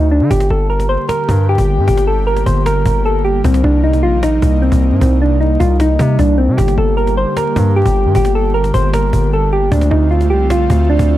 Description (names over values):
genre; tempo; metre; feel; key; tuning
hip hop, trap; 153 BPM; 4/4; half-time; G minor; A4 = 440 Hz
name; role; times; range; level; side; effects
soft electric-piano-like synth keys; melody; 0.0-11.2 s; C4 to C5; -16 LUFS; equal; chorus, low-pass filter
distorted 808-style bass; bass; 0.0-11.2 s; G1 to D3; -14 LUFS; equal; distortion
airy breathy pad; sustained chords; 0.3-11.2 s; C3 to G4; -20 LUFS; left 1 dB; chorus
cajon; drums; 0.3-11.1 s; none; -20 LUFS; equal; none
room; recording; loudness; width
little or no reverb; vinyl crackle; -11 LUFS; side -14 dB against mid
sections
0.0-11.2 A section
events
break 0.0-0.3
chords
0.3 Gm; 3.4 Cm7; 6.6 Gm; 9.7 Dm7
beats
| 0.31 0.70 1.09 1.48 | 1.88 2.27 2.66 3.05 | 3.44 3.84 4.23 4.62 | 5.01 5.40 5.80 6.19 | 6.58 6.97 7.37 7.76 | 8.15 8.54 8.93 9.33 | 9.72 10.11 10.50 10.89